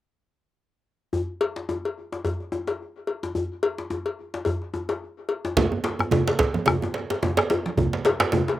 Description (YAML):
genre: west african traditional, West African drum ensemble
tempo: 108 BPM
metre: 4/4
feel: swing 57% on 16ths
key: none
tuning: none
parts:
  - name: djembe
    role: percussion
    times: 1.1-8.6 s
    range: none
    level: -28 LUFS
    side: left 2 dB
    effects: none
  - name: cowbell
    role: percussion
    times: 1.4-8.6 s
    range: none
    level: -27 LUFS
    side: left 4 dB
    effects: slapback echo
  - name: bombo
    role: percussion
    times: 5.6-8.4 s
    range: none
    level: -25 LUFS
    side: left 1 dB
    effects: none
  - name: congas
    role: percussion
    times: 5.6-8.5 s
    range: none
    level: -27 LUFS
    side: right 4 dB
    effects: none
  - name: djembe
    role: percussion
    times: 5.6-8.5 s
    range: none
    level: -25 LUFS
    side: right 4 dB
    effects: none
room: little or no reverb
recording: recorded outdoors, with no room sound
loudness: -23 LUFS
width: side -14 dB against mid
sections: 1.1-5.6 A section; 5.6-8.6 B section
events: none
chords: none